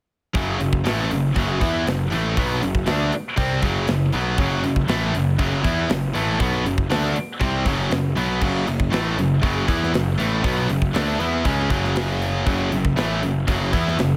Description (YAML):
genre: heavy metal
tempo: 119 BPM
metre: 4/4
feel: straight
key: F# minor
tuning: A4 = 440 Hz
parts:
  - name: high-gain distorted guitar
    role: riff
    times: 0.3-14.2 s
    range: F#2 to E4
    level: -27 LUFS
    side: equal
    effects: distortion
  - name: tight distorted guitar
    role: riff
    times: 0.3-14.2 s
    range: F#2 to E4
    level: -27 LUFS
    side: equal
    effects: distortion
  - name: fuzz picked electric bass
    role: bass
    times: 0.3-14.2 s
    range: F#1 to E2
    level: -27 LUFS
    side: equal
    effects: overdrive
  - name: tight metal drum kit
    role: drums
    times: 0.3-14.1 s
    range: crash cymbal, hi-hat, kick drum, snare drum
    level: -28 LUFS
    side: equal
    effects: none
room: light reverb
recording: none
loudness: -21 LUFS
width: mono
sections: 0.3-14.2 A section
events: none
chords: 0.3 F#m